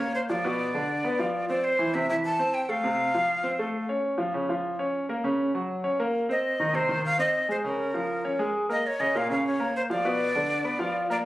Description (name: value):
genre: latin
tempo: 200 BPM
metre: 4/4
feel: straight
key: unclear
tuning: A4 = 440 Hz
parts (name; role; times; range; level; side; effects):
- breathy bright jazz flute; melody; 0.0-3.9, 6.3-11.2 s; Bb4 to A5; -27 LUFS; equal; none
- clear concert grand piano; accompaniment; 0.0-11.3 s; Bb2 to B5; -26 LUFS; equal; none
room: moderate studio reverb, RT60 0.6 s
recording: recorded on a phone in the room, club reverb, faint mains hum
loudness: -24 LUFS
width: side -16 dB against mid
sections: 0.0-8.8 A section; 8.8-11.3 A section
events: none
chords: 0.4 Bdim; 1.6 C; 2.8 F; 4.0 Db; 5.2 Gb/Db; 6.4 Cm; 7.6 Bbm7; 8.8 Bbm; 10.1 Bdim